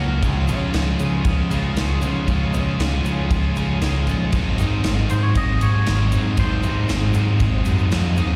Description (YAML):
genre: indie rock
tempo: 117 BPM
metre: 4/4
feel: straight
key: Db major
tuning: A4 = 440 Hz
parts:
  - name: crunchy overdriven guitar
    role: riff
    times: 0.0-8.4 s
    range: Ab2 to Eb4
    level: -26 LUFS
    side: equal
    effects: analog chorus, tape echo
  - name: distorted electric guitar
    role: riff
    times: 0.0-8.4 s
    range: Ab2 to Bb4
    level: -31 LUFS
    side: equal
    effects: distortion, slapback echo
  - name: growling picked electric bass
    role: bass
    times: 0.0-8.4 s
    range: Ab1 to Db3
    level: -23 LUFS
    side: equal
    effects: overdrive
  - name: big rock drum kit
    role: drums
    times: 0.2-8.3 s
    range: kick drum, ride cymbal, snare drum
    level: -26 LUFS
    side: equal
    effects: none
  - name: egg shaker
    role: percussion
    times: 0.2-8.3 s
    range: none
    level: -48 LUFS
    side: equal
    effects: none
  - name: twangy electric guitar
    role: melody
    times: 5.1-6.9 s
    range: C5 to Eb5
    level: -31 LUFS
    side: equal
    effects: slapback echo, tape echo
room: little or no reverb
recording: live gig heard through the venue's PA, recital hall reverb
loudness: -20 LUFS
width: mono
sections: 0.0-8.4 A section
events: none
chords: 0.2 Db; 4.3 Ab7